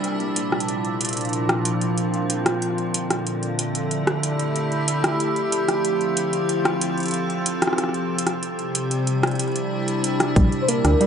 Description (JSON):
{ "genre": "IDM", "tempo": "93 BPM", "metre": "4/4", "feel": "straight", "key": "Bb lydian", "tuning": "A4 = 441 Hz", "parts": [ { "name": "icy glass pad", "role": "sustained chords", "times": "0.0-11.1 s", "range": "Bb2 to A4", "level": "-22 LUFS", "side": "equal", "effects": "chorus, built-in reverb" }, { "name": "booming analog drum machine", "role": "drums", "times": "0.0-11.1 s", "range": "hi-hat, rim click", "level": "-24 LUFS", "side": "equal", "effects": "overdrive" }, { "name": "warbly dusty pluck", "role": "arpeggios", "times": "10.4-11.1 s", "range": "G3 to D4", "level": "-27 LUFS", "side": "right 2 dB", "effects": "chorus, analog delay" }, { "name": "dark detuned saw bass", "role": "bass", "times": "10.4-11.0 s", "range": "Bb1 to D2", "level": "-19 LUFS", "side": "equal", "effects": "tube saturation" }, { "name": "electronic kick drum", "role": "drums", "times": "10.4-10.5 s", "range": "none", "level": "-20 LUFS", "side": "equal", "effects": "none" }, { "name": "warbly nostalgic lead", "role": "melody", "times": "10.6-11.1 s", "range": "Bb4 to C5", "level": "-25 LUFS", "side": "left 2 dB", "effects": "analog chorus, tape echo" } ], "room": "moderate lush hall reverb, RT60 1.9 s, digital ambience", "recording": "dry, gritty hardware recording, transformer saturation, nothing above 10.8 kHz", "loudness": "-20 LUFS", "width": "side -7 dB against mid", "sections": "0.0-10.4 A section", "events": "band accent 0.0", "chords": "0.0 Bb; 2.6 D7sus4; 5.2 Fmaj7; 7.8 C; 10.4 Bb6", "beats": "| 0.04 0.69 1.33 1.98 | 2.62 3.27 3.91 4.56 | 5.20 5.85 6.49 7.14 | 7.78 8.43 9.07 9.72 | 10.36 11.01" }